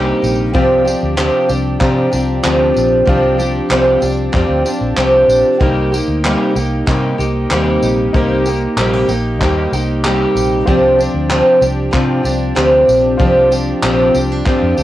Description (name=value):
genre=acoustic pop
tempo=95 BPM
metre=4/4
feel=straight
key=C minor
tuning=A4 = 440 Hz
part: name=fingerpicked twelve-string acoustic guitar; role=accompaniment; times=0.0-14.8 s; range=C3 to G4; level=-13 LUFS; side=equal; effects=cassette tape
part: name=warm concert grand piano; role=accompaniment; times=0.0-14.8 s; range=D4 to Bb5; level=-25 LUFS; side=left 3 dB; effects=cassette tape
part: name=picked steel-string acoustic guitar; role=arpeggios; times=0.0-14.8 s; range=F3 to G4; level=-23 LUFS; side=right 5 dB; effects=cassette tape
part: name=vintage muted fingered electric bass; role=bass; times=0.0-14.8 s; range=Bb1 to C3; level=-19 LUFS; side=equal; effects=none
part: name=natural country drum kit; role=drums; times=0.2-14.8 s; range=handclaps, kick drum, tambourine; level=-20 LUFS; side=equal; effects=cassette tape
room=light reverb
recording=home recording on cassette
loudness=-11 LUFS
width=side -14 dB against mid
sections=0.0-14.8 A section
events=none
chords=0.0 Cm7; 0.5 G7sus4; 5.6 Cm7; 10.7 G7sus4